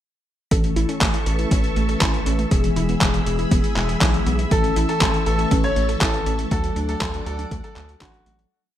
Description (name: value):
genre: italo disco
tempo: 120 BPM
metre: 4/4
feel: straight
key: A major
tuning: A4 = 440 Hz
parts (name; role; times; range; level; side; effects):
- string machine, full ensemble; sustained chords; 0.5-8.5 s; G#4 to E6; -30 LUFS; equal; ensemble chorus
- wide unison pluck; arpeggios; 0.5-8.5 s; F#3 to A4; -29 LUFS; right 2 dB; digital delay
- mellow synth brass; stabs; 0.5-8.5 s; E3 to B4; -26 LUFS; left 3 dB; chorus
- round analog bass; bass; 0.5-8.5 s; E1 to D2; -24 LUFS; equal; tube saturation
- dusty soul sampler-style drum kit; drums; 0.5-8.5 s; handclaps, hi-hat; -26 LUFS; equal; overdrive, gated reverb
- electronic kick drum; drums; 0.5-8.1 s; none; -22 LUFS; equal; overdrive
- bright concert grand piano; melody; 4.5-8.3 s; F#4 to C#5; -26 LUFS; left 1 dB; ping-pong delay
room: light reverb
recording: bright 1980s-style digital production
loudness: -18 LUFS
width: side -11 dB against mid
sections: 0.5-8.5 verse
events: fade-out 5.8-8.5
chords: 0.5 A; 2.5 E; 4.5 A; 6.5 D